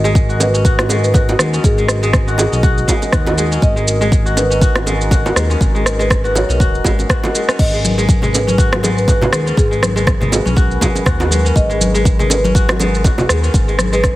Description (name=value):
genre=afro house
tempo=121 BPM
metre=4/4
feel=swing 56% on 16ths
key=G# minor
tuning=A4 = 441 Hz
part: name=dark analog pad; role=sustained chords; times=0.0-14.2 s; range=F#4 to D#5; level=-23 LUFS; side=equal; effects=chorus, vintage 12-bit sampler grit, sidechain pumping
part: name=kora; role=arpeggios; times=0.0-14.2 s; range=D#3 to F#4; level=-22 LUFS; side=left 1 dB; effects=sidechain pumping, tape echo
part: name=smooth synth bass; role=bass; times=0.0-14.2 s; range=D#1 to D#2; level=-18 LUFS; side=equal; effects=sidechain pumping
part: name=afro-pop drum kit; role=drums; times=0.1-14.2 s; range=crash cymbal, rim click, shaker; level=-20 LUFS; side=right 1 dB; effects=small room ambience
part: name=electronic kick drum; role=drums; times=0.2-14.1 s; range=none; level=-14 LUFS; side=equal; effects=small room ambience
part: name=marimba with soft mallets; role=melody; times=0.4-14.0 s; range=G#4 to D#5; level=-22 LUFS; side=equal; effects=tape echo
part: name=bongos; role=percussion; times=0.4-14.1 s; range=none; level=-21 LUFS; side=right 2 dB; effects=none
part: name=congas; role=percussion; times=7.8-14.1 s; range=none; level=-21 LUFS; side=left 2 dB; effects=none
room=light reverb, small room ambience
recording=heavily compressed radio sound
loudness=-12 LUFS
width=side -16 dB against mid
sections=0.0-14.2 A section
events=none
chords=0.0 G#m9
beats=0.15 0.65 1.15 | 1.64 2.14 2.63 3.13 | 3.62 4.12 4.62 5.11 | 5.61 6.10 6.60 7.09 | 7.59 8.09 8.58 9.08 | 9.57 10.07 10.57 11.06 | 11.56 12.05 12.55 13.04 | 13.54 14.04